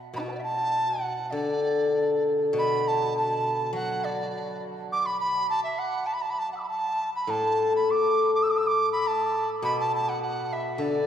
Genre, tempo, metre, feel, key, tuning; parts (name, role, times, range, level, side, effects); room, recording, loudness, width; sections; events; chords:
chinese traditional; 102 BPM; 2/4; rubato; D gong mode; A4 = 439 Hz
steel-string zither; accompaniment; 0.1-11.1 s; A2 to F#3; -27 LUFS; left 3 dB
mellow large dizi; melody; 0.2-11.1 s; D4 to E6; -26 LUFS; right 2 dB
wet cathedral reverb, RT60 6.8 s; recorded in a church or concert hall; -24 LUFS; side -9 dB against mid
0.0-2.6 A section; 2.6-11.1 B section